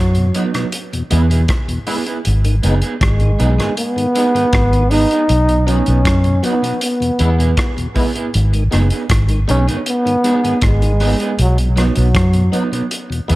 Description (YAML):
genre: roots reggae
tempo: 79 BPM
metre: 4/4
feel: straight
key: G# minor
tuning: A4 = 437 Hz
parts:
  - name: dark trombone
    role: melody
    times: 0.0-12.9 s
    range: F#3 to D#4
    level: -18 LUFS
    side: equal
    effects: dub echo
  - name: vintage muted fingered electric bass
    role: bass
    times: 0.0-13.4 s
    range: F#1 to F#2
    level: -14 LUFS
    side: equal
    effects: none
  - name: crunchy breakbeat drum kit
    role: drums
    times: 0.1-13.4 s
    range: hi-hat, kick drum, rim click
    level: -20 LUFS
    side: equal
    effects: none
  - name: tonewheel organ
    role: accompaniment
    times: 0.2-13.4 s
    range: E2 to E4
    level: -24 LUFS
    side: left 2 dB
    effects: overdrive, chorus vibrato, slow rotary speaker
  - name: electric guitar at the edge of break-up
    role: accompaniment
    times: 0.3-13.4 s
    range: F#3 to G#4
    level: -23 LUFS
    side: right 4 dB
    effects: harmonic tremolo, dub echo
room: small room ambience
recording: echo-heavy mix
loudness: -13 LUFS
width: side -18 dB against mid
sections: 0.0-13.4 A section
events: none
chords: 0.0 B; 0.7 E; 2.3 G#m; 5.3 B; 6.8 E; 8.3 G#m; 11.4 B